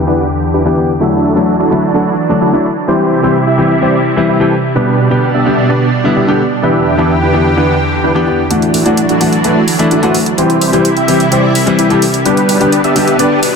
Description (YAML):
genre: EDM, festival progressive house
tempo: 128 BPM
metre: 4/4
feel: straight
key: unclear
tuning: A4 = 440 Hz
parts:
  - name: lush unison pad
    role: sustained chords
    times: 0.0-13.6 s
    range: E2 to G4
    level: -15 LUFS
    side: right 1 dB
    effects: chorus
  - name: dense compressed supersaw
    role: riff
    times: 0.0-13.4 s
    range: B2 to A5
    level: -14 LUFS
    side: right 2 dB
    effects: low-pass filter, tape echo
  - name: clear concert grand piano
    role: accompaniment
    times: 0.1-13.3 s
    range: D3 to C5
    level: -13 LUFS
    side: left 3 dB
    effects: tape echo
  - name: electronic hi-hat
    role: drums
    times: 8.5-13.5 s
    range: none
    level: -18 LUFS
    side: right 1 dB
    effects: low-pass filter on hats
  - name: wide detuned saw bass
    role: bass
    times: 8.7-13.6 s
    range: B1 to D2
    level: -23 LUFS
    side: right 1 dB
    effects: none
room: light reverb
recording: dense, heavily limited modern master, low-pass filter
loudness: -9 LUFS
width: side -5 dB against mid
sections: 0.0-8.5 A section; 8.5-13.6 B section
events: filter sweep 0.0-8.5; build-up 8.5-13.6; filter sweep on supersaw synth 8.5-13.6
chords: 0.0 Em7; 1.0 Dadd9; 2.9 C; 4.8 G/B; 6.6 Em7; 8.5 Dadd9; 10.4 C; 12.3 G/B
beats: 0.07 0.54 | 1.01 1.48 1.94 2.41 | 2.88 3.35 3.82 4.29 | 4.76 5.22 5.69 6.16 | 6.63 7.10 7.57 8.04 | 8.51 8.97 9.44 9.91 | 10.38 10.85 11.32 11.79 | 12.26 12.72 13.19